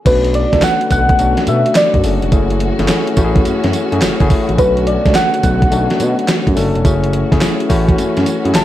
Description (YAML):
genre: R&B, new jack swing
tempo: 106 BPM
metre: 4/4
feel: swing 66% on 16ths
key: unclear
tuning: A4 = 445 Hz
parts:
  - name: soft struck synth lead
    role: melody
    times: 0.1-8.6 s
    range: B4 to A5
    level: -16 LUFS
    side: equal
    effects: chorus, phaser
  - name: tine electric piano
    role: accompaniment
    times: 0.1-8.6 s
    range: A3 to A4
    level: -18 LUFS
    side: left 4 dB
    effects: overdrive
  - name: dark studio string section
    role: sustained chords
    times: 0.1-8.6 s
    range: D3 to F#4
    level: -24 LUFS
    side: right 2 dB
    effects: none
  - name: smooth gliding synth bass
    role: bass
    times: 0.1-8.6 s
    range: E1 to B2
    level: -17 LUFS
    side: right 1 dB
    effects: none
  - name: gated 80s digital drum machine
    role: drums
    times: 0.1-8.6 s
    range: crash cymbal, handclaps, hi-hat, kick drum, snare drum, tambourine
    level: -15 LUFS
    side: right 1 dB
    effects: gated reverb, gated reverb snare, overdrive
room: little or no reverb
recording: none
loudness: -11 LUFS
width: side -13 dB against mid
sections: 0.1-8.6 A section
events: none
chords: 0.1 Bm7; 2.3 F#m7; 4.6 Bm7; 6.8 F#m7